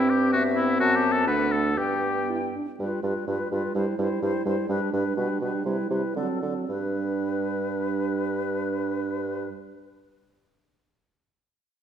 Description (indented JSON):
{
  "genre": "quick classical-period movement for wind quintet",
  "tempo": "112-129 BPM",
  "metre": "2/4",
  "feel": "rubato",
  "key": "G major",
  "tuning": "A4 = 440 Hz",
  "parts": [
    { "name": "concert flute", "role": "melody", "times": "0.0-9.5 s", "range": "A4 to A5", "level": "-32 LUFS", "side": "left 6 dB", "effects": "none" },
    { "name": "warm oboe", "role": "second line", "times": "0.0-2.3 s", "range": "E4 to B4", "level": "-25 LUFS", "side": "left 3 dB", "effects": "none" },
    { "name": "dark clarinet", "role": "accompaniment", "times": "0.0-9.5 s", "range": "A3 to F4", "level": "-30 LUFS", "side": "right 6 dB", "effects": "none" },
    { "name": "warm French horn", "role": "accompaniment", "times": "0.0-9.5 s", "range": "F#3 to E4", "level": "-30 LUFS", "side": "left 1 dB", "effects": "none" },
    { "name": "mellow bassoon", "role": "bass", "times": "0.0-9.5 s", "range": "D2 to D3", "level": "-29 LUFS", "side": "right 2 dB", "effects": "none" }
  ],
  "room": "moderate scoring stage reverb, RT60 1.6 s",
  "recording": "none",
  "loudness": "-24 LUFS",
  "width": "side -9 dB against mid",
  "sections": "0.0-2.8 A section; 2.8-6.7 B section; 6.7-8.7 C section",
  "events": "slowing down 4.2-6.7",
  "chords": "0.0 C/G; 0.8 Am13/F#; 1.3 D; 1.8 G; 2.8 G7; 3.7 C/G; 4.7 G; 5.2 G/B; 5.7 Cmaj7; 6.2 D7; 6.7 G",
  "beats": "0.32 | 0.80 1.27 | 1.77 2.29 | 2.79 3.27 | 3.75 4.22 | 4.69 5.17 | 5.65 6.16 | 6.68 7.19 | 7.70 8.21"
}